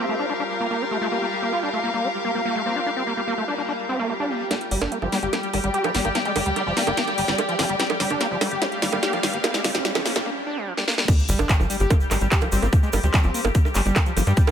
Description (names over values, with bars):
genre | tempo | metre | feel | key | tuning
psychedelic trance | 146 BPM | 4/4 | straight | G minor | A4 = 440 Hz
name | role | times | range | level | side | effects
metallic wobble bass | second line | 0.0-4.5, 12.5-14.5 s | G3 to C4 | -36 LUFS | left 3 dB | none
pulsing gated texture | sustained chords | 0.0-14.5 s | G3 to G4 | -29 LUFS | left 1 dB | chorus, built-in reverb, sidechain pumping
overdriven acid bass | riff | 0.0-14.4 s | F3 to G4 | -27 LUFS | equal | distortion, auto-pan, sidechain pumping, dub echo
dark chamber string section | texture | 0.0-10.3 s | F4 to G5 | -28 LUFS | left 2 dB | sidechain pumping
drum and bass drum kit | drums | 4.5-14.5 s | bongos, crash cymbal, handclaps, hi-hat, snare drum | -24 LUFS | right 2 dB | none
riser and sub drop | sound effects | 6.6-12.7 s | none | -33 LUFS | right 1 dB | none
tight sequencer bass | bass | 4.7-14.3 s | G1 to G2 | -25 LUFS | equal | none
electronic kick drum | drums | 11.1-14.5 s | none | -18 LUFS | equal | none
tube shaker | percussion | 11.1-14.5 s | none | -36 LUFS | right 1 dB | none
room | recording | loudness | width
light reverb, digital ambience | high-pass filter | -20 LUFS | side -8 dB against mid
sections
0.0-4.5 A section; 4.5-11.1 B section; 11.1-14.5 C section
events
build-up 4.5-11.1; drum fill 4.5-10.3, 10.8-11.1; filter sweep on acid bass 4.5-11.1; filter sweep 4.5-11.1; riser 6.6-10.3; break 10.3-11.1; drop 11.1-14.5; impact 11.1-12.7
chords
0.0 Bb5; 4.5 G5